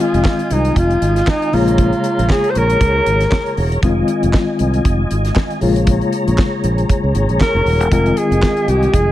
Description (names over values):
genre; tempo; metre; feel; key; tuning
disco; 117 BPM; 4/4; swing 56% on 16ths; F minor; A4 = 435 Hz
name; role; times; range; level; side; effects
breathy alto saxophone; melody; 0.0-3.6, 7.4-9.1 s; Eb4 to C5; -17 LUFS; equal; tape echo
reed electric piano; accompaniment; 0.0-9.1 s; Db3 to F4; -20 LUFS; left 4 dB; fast tremolo
mellow tonewheel organ; sustained chords; 0.0-9.1 s; F4 to Bb5; -23 LUFS; right 1 dB; chorus vibrato, slow rotary speaker
fingered electric bass; bass; 0.1-9.1 s; Eb1 to Db2; -17 LUFS; equal; none
damped 70s drum kit; drums; 0.1-9.1 s; handclaps, hi-hat, kick drum, snare drum; -18 LUFS; equal; none
room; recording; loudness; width
little or no reverb; none; -13 LUFS; side -13 dB against mid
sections
0.0-9.1 A section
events
none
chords
0.0 Fm7; 1.5 Bbm7; 3.8 Fm7; 5.6 Bbm7; 7.9 Fm7